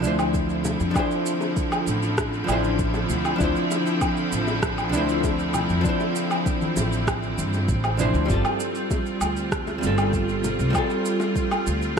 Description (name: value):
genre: sunset chillout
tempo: 98 BPM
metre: 4/4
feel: straight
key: D minor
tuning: A4 = 440 Hz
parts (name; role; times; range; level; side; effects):
- archtop guitar, miked and amplified; accompaniment; 0.0-12.0 s; F3 to C5; -26 LUFS; left 1 dB; auto-pan, digital delay, shimmer reverb
- bright symphonic string section; sustained chords; 0.0-12.0 s; D3 to F4; -27 LUFS; right 1 dB; shimmer reverb
- upright bass; bass; 0.0-12.0 s; G1 to G2; -26 LUFS; equal; none
- electronic shaker, woodblock and rim click; drums; 0.0-11.9 s; none; -29 LUFS; equal; none
- bongos and congas; percussion; 0.2-11.6 s; none; -35 LUFS; left 4 dB; none
- electronic kick drum; drums; 0.3-12.0 s; none; -27 LUFS; equal; none
room: moderate lush hall reverb, RT60 2.4 s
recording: bright 1980s-style digital production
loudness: -21 LUFS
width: side -6 dB against mid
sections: 0.0-12.0 A section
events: none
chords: 0.0 Dm9; 8.3 G9sus4